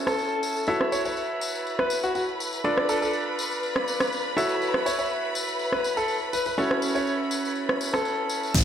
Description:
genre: piano house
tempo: 122 BPM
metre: 4/4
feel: straight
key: A major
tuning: A4 = 440 Hz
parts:
  - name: dark symphonic violin section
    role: sustained chords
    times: 0.0-8.6 s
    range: A4 to E6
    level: -32 LUFS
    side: equal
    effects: sidechain pumping, low-pass filter
  - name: clear upright piano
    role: riff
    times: 0.0-8.5 s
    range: C#4 to E5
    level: -28 LUFS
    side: right 1 dB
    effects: sidechain pumping, dub echo
  - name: clear concert grand piano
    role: melody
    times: 0.1-8.5 s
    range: F#4 to C#5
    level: -29 LUFS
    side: left 1 dB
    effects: dub echo
  - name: garage drum kit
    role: drums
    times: 0.1-8.6 s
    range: crash cymbal, hi-hat, rim click, tambourine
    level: -29 LUFS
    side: right 1 dB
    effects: overdrive, low-pass filter on snare, small room reverb, low-pass filter on hats, low-pass filter on cymbals, low-pass filter on perc
  - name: tambourine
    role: percussion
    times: 0.1-8.5 s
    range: none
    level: -35 LUFS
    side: left 4 dB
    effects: none
  - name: fat analog bass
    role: bass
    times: 8.5-8.6 s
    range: A1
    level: -22 LUFS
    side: equal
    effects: sidechain pumping
  - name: electronic kick drum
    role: drums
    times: 8.5-8.6 s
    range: none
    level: -20 LUFS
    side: equal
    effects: overdrive, small room reverb
  - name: hi-hat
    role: drums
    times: 8.5-8.6 s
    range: none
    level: barely audible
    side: none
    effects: none
  - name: downlifter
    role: sound effects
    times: 8.5-8.6 s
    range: none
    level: -23 LUFS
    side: equal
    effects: none
room: moderate lush hall reverb, RT60 1.6 s, small room ambience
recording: none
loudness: -24 LUFS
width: side -9 dB against mid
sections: 0.0-8.5 A section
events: none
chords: 0.0 F#m7; 0.7 A6; 2.6 Dm6; 4.4 A6; 6.6 F#m7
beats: 0.18 | 0.68 1.17 1.66 2.15 | 2.64 3.14 3.63 4.12 | 4.61 5.10 5.59 6.09 | 6.58 7.07 7.56 8.05 | 8.55

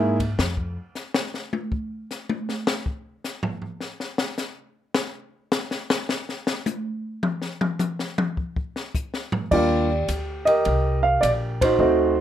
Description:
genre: jazz piano trio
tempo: 105 BPM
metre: 4/4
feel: swing 67% on 8ths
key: unclear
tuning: A4 = 440 Hz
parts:
  - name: warm upright piano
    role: melody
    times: 0.0-0.2, 9.5-12.2 s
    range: G3 to F5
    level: -19 LUFS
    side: right 2 dB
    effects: none
  - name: upright bass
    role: bass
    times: 0.0-0.8, 9.5-12.2 s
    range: Bb1 to G#2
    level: -26 LUFS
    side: equal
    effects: none
  - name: open jazz drum kit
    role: drums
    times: 0.2-11.7 s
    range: crash cymbal, hi-hat, kick drum, ride cymbal, snare drum, toms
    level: -26 LUFS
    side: left 2 dB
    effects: none
room: light reverb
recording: none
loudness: -22 LUFS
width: side -10 dB against mid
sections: 0.0-9.5 A section; 9.5-12.2 B section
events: upright piano solo 0.0-9.5; drum solo 0.4-9.5; band accent 11.5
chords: 0.4 N.C.; 9.5 Ebmaj9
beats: | 0.38 0.95 1.52 2.09 | 2.67 3.23 3.81 4.38 | 4.95 5.52 6.09 6.66 | 7.23 7.80 8.37 8.94 | 9.51 10.08 10.65 11.22 | 11.80

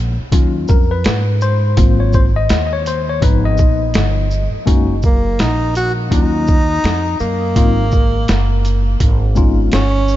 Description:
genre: hip hop, jazz-hop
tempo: 83 BPM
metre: 4/4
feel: swing 60% on 16ths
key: F# major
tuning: A4 = 440 Hz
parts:
  - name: tine electric piano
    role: accompaniment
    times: 0.0-9.8 s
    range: F3 to D#5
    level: -20 LUFS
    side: left 6 dB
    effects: overdrive, medium tremolo
  - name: upright bass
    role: bass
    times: 0.0-10.2 s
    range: F#1 to G#2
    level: -16 LUFS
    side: right 1 dB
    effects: none
  - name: boom bap sampler-style drum kit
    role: drums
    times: 0.3-10.2 s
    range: hi-hat, kick drum, shaker, snare drum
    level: -16 LUFS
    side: right 1 dB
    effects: vintage 12-bit sampler grit
  - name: warm tenor saxophone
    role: melody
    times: 5.0-10.2 s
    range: A#3 to F#4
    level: -19 LUFS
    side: equal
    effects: ping-pong delay
room: light reverb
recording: nothing above 7.6 kHz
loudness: -12 LUFS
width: side -14 dB against mid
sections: 0.0-4.7 A section; 4.7-10.2 B section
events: tine electric piano solo 0.0-4.7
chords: 0.3 D#m9; 1.8 G#13; 3.2 G7alt; 4.7 F#6; 6.1 D#m9; 7.6 G#13; 9.0 C#9/G#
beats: 0.33 1.05 | 1.77 2.50 3.22 3.94 | 4.67 5.39 6.11 6.83 | 7.56 8.28 9.00 9.73

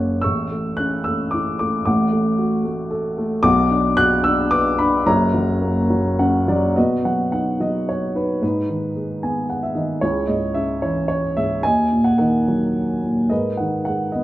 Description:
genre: classical, lyrical solo piano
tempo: 102-115 BPM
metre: 3/4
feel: rubato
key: B major from 6.8 s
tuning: A4 = 440 Hz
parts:
  - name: dark upright piano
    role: solo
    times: 0.0-14.2 s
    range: F#1 to F#6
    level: -17 LUFS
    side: equal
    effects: none
room: moderate recital hall reverb, RT60 1.7 s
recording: minimal, uncompressed stereo recording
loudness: -17 LUFS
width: side -15 dB against mid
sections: 0.0-6.8 A section; 6.8-14.2 B section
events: upright piano fill 0.0, 5.9-6.8, 9.0-10.0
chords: 0.2 A; 1.9 D/A; 3.4 Bm; 5.1 F#; 6.8 B; 8.4 G#m; 10.0 C#m; 11.6 D#m; 13.3 G#madd9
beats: | 0.23 0.79 1.33 | 1.87 2.40 2.92 | 3.44 3.98 4.53 | 5.08 5.63 6.19 | 6.76 7.33 7.88 | 8.43 8.96 9.49 | 10.02 10.55 11.09 | 11.63 12.18 12.74 | 13.30 13.87

